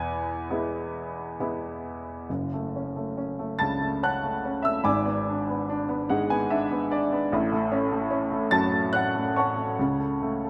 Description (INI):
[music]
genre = classical, lyrical solo piano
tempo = 72 BPM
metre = 3/4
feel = uneven beats, rubato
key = F# minor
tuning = A4 = 440 Hz
[part]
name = warm upright piano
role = solo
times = 0.0-10.5 s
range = F#1 to A6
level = -27 LUFS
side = equal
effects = none
[sound]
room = moderate concert hall reverb, RT60 1.9 s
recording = none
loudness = -27 LUFS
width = mono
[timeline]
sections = 0.0-2.3 A section; 2.3-10.5 B section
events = upright piano fill 5.7-7.3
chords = 0.0 E; 2.3 F#m; 4.8 G#dim; 7.3 F#m/A; 9.8 F#m/C#